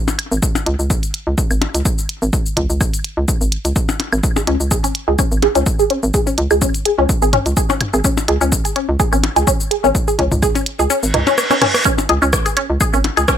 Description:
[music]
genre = minimal techno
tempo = 126 BPM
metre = 4/4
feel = swing 54% on 16ths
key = unclear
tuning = A4 = 439 Hz
[part]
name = minimal click drum kit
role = drums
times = 0.1-13.4 s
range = hi-hat, rim click, shaker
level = -22 LUFS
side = equal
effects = none
[part]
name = electronic percussion blips, claves and toms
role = percussion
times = 0.1-13.1 s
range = none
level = -22 LUFS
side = left 4 dB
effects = dub echo
[part]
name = hollow knocking FM bass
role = bass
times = 0.3-13.3 s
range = G#1 to C#2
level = -18 LUFS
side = equal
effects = sidechain pumping
[part]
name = electronic kick drum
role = drums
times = 0.4-13.4 s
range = none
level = -18 LUFS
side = equal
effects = none
[part]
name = resonant blip pluck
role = riff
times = 4.4-13.3 s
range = C#4 to G#4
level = -17 LUFS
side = equal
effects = phaser, sidechain pumping, digital delay
[part]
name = reverse cymbal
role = sound effects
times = 11.1-11.9 s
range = none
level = -20 LUFS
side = right 2 dB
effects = none
[sound]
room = light reverb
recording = none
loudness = -14 LUFS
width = side -9 dB against mid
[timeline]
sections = 0.0-13.4 A section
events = kick drops out 10.9-11.9; reverse cymbal 11.1-11.9; drum fill 11.1-11.9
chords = 0.0 C#5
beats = | 0.43 0.90 1.38 1.85 | 2.33 2.81 3.28 3.76 | 4.24 4.71 5.19 5.66 | 6.14 6.62 7.09 7.57 | 8.04 8.52 9.00 9.47 | 9.95 10.43 10.90 11.38 | 11.85 12.33 12.81 13.28

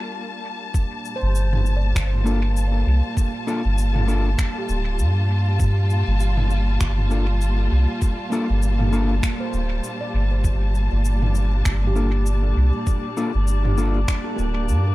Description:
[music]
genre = ambient dub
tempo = 99 BPM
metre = 4/4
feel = swing 58% on 16ths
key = G minor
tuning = A4 = 439 Hz
[part]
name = warm studio string section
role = sustained chords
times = 0.0-14.9 s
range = Bb2 to A5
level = -28 LUFS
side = left 1 dB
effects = none
[part]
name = handpan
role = arpeggios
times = 0.0-14.9 s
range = Bb3 to D5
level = -33 LUFS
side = right 2 dB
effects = tape echo
[part]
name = drifting glass-harmonics texture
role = texture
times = 0.0-0.8, 10.9-14.9 s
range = Bb3 to D5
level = -35 LUFS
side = left 1 dB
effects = chorus, built-in reverb
[part]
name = electronic kick drum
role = drums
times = 0.7-14.2 s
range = none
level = -21 LUFS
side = equal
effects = none
[part]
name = organic electronic drum kit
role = drums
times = 0.7-14.8 s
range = finger snaps, shaker, toms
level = -30 LUFS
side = right 1 dB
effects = overdrive, dub echo
[part]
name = soft dub sub bass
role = bass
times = 1.2-14.9 s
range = D1 to G2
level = -19 LUFS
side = equal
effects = none
[part]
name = mellow electric guitar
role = stabs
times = 2.3-14.0 s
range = Bb3 to A4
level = -28 LUFS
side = left 2 dB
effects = dub echo
[sound]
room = digital ambience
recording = none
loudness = -18 LUFS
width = side -18 dB against mid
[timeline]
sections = 0.7-14.9 A section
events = break 0.0-0.7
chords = 0.0 Gm9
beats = 0.14 | 0.75 1.35 1.96 2.56 | 3.17 3.78 4.38 4.99 | 5.59 6.20 6.81 7.41 | 8.02 8.62 9.23 9.84 | 10.44 11.05 11.65 12.26 | 12.87 13.47 14.08 14.69

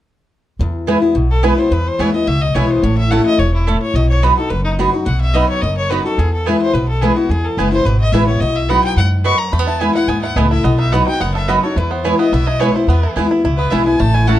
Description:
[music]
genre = bluegrass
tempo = 215 BPM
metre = 4/4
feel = straight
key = E major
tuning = A4 = 444 Hz
[part]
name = picked old ladder-braced acoustic guitar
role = accompaniment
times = 0.6-14.4 s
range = E2 to F#4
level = -18 LUFS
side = left 3 dB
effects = none
[part]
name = upright bass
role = bass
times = 0.6-14.4 s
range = E1 to F#2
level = -16 LUFS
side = equal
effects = none
[part]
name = mandolin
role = stabs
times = 0.9-14.4 s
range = A3 to B5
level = -19 LUFS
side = right 6 dB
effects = none
[part]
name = clear fiddle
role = melody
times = 1.3-14.4 s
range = D#4 to C#6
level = -21 LUFS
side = left 2 dB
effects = none
[part]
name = bluegrass banjo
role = melody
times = 9.5-14.4 s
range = A3 to A4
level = -24 LUFS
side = right 5 dB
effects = none
[sound]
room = moderate studio reverb, RT60 0.8 s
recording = dark, warm production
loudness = -13 LUFS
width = side -13 dB against mid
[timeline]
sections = 0.6-14.4 A section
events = none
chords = 0.6 E; 2.8 A; 3.9 B; 6.2 E; 8.4 B; 9.5 E; 10.6 B; 11.8 E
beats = | 0.60 0.88 1.16 1.43 | 1.71 1.99 2.27 2.55 | 2.83 3.11 3.39 3.67 | 3.95 4.23 4.51 4.79 | 5.07 5.34 5.62 5.90 | 6.18 6.46 6.74 7.02 | 7.30 7.58 7.86 8.14 | 8.41 8.69 8.97 9.25 | 9.53 9.81 10.09 10.37 | 10.65 10.93 11.21 11.49 | 11.77 12.05 12.32 12.61 | 12.88 13.16 13.44 13.72 | 14.00 14.28

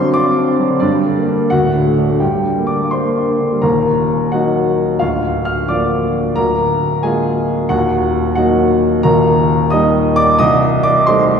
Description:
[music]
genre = classical, virtuoso piano study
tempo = 88 BPM (dotted quarters)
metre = 6/8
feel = rubato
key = G minor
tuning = A4 = 440 Hz
[part]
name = warm baby grand piano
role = solo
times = 0.0-11.4 s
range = C1 to F6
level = -12 LUFS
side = equal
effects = none
[sound]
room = wet concert hall reverb, RT60 2.3 s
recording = recorded in a church or concert hall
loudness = -12 LUFS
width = side -7 dB against mid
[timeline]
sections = 0.0-3.6 A section; 3.6-11.4 B section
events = none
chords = 0.0 D7/G; 0.8 Gm; 1.5 D; 2.2 Gm; 3.6 Ebm; 5.0 Bb/D; 6.4 Bb7/D; 7.7 Ebm; 9.0 Eb; 10.4 Am7b5/C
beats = 0.14 | 0.82 1.51 | 2.21 2.92 | 3.63 4.33 | 5.01 5.69 | 6.37 7.03 | 7.70 8.37 | 9.04 9.72 | 10.40 11.08

